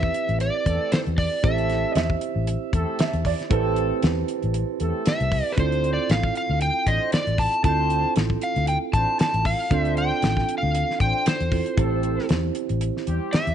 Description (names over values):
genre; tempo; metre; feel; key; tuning
straight-eighth soul blues; 116 BPM; 4/4; swing 55% on 16ths; A minor; A4 = 440 Hz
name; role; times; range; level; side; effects
overdriven slide guitar; melody; 0.0-1.9, 5.1-13.5 s; B4 to A5; -25 LUFS; equal; none
bell-like tine electric piano; accompaniment; 0.0-13.5 s; C4 to C5; -28 LUFS; right 12 dB; auto-pan
vintage muted fingered electric bass; bass; 0.0-13.5 s; A1 to E2; -25 LUFS; left 2 dB; none
damped 70s drum kit; drums; 0.0-13.5 s; hi-hat, kick drum, snare drum; -24 LUFS; left 1 dB; none
warm horn section; sustained chords; 0.7-13.5 s; G3 to C5; -33 LUFS; left 2 dB; none
warm upright piano; second line; 1.9-4.9 s; C4 to E5; -30 LUFS; right 8 dB; none
room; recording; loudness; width
light reverb, small room ambience; 1960s-style stereo, nothing above 10.4 kHz; -20 LUFS; side -9 dB against mid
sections
0.0-13.5 A section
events
none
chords
0.0 Am7; 5.6 Dm7; 11.8 Am7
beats
0.41 0.92 | 1.44 1.96 2.48 2.99 | 3.51 4.03 4.54 5.06 | 5.58 6.09 6.61 7.13 | 7.64 8.16 8.68 9.20 | 9.71 10.23 10.74 11.26 | 11.78 12.29 12.81 13.33